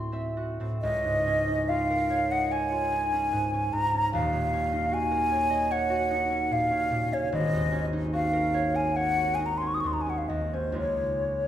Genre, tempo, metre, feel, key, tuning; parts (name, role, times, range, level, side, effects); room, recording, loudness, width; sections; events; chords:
classical, impressionist duo for flute and harp; 61-76 BPM; 4/4; rubato; Db major; A4 = 439 Hz
concert harp; accompaniment; 0.0-11.5 s; Eb1 to C6; -29 LUFS; right 1 dB
mellow hollow silver concert flute; melody; 0.8-11.5 s; C5 to Eb6; -26 LUFS; equal
wet recital hall reverb, RT60 1.5 s; heard from further back in the room; -24 LUFS; side -11 dB against mid
0.8-11.5 A section
0.0 D9; 0.8 Db69; 4.1 Ebm9; 7.3 Ab9sus4; 10.8 Dbadd9